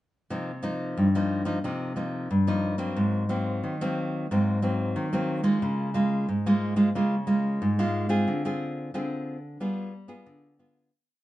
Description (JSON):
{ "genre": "samba", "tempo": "90 BPM", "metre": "4/4", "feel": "straight", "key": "C minor", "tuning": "A4 = 438 Hz", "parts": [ { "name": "nylon-string guitar", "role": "solo", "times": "0.3-10.9 s", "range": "G2 to Ab4", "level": "-24 LUFS", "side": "equal", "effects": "none" } ], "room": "moderate studio reverb, RT60 0.9 s", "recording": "nothing above 10.5 kHz", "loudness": "-24 LUFS", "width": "side -15 dB against mid", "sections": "0.3-10.9 A section", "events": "fade-out 8.3-10.9", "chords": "0.3 Cm7; 3.0 Ab9; 5.6 Db6; 8.3 Dm7b5; 9.6 G7b9" }